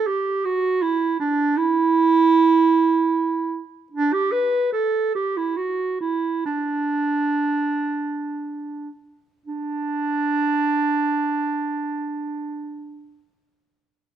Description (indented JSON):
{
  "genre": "classical, baroque-style fantasia for unaccompanied clarinet",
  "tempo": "57-80 BPM",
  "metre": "3/4",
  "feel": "rubato",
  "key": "D major",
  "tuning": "A4 = 438 Hz",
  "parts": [
    { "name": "mellow clarinet", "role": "solo", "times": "0.0-13.2 s", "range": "D4 to B4", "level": "-20 LUFS", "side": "right 3 dB", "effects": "none" }
  ],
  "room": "light reverb",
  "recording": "close, detailed microphones",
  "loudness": "-19 LUFS",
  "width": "side -9 dB against mid",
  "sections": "0.0-9.5 A section; 9.5-12.5 B section",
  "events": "slowing down 2.7-9.5",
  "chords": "none"
}